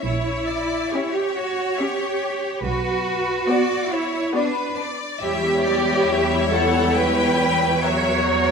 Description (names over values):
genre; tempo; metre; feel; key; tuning
classical, slow romantic movement for string orchestra; 69 BPM; 3/4; rubato; B minor; A4 = 441 Hz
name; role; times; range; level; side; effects
warm symphonic violin section; second line; 0.0-8.5 s; B4 to G5; -26 LUFS; left 4 dB; none
rich symphonic cello section; bass; 0.0-8.5 s; D4 to C#5; -22 LUFS; right 2 dB; none
rich symphonic double bass section; bass; 0.0-8.5 s; A#1 to E2; -25 LUFS; right 2 dB; none
clear symphonic violin section; melody; 0.9-8.5 s; A#4 to E5; -28 LUFS; left 5 dB; none
clear symphonic viola section; accompaniment; 0.9-8.5 s; F#3 to G4; -26 LUFS; left 2 dB; none
room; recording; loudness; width
wet scoring stage reverb, RT60 1.6 s; none; -19 LUFS; side -5 dB against mid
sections
0.0-8.5 A section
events
none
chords
0.0 A#dim7; 2.6 Bm; 5.2 C#dim/E; 7.8 F#7/E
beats
| 0.04 0.92 1.80 | 2.65 3.49 4.35 | 5.22 6.08 6.94 | 7.82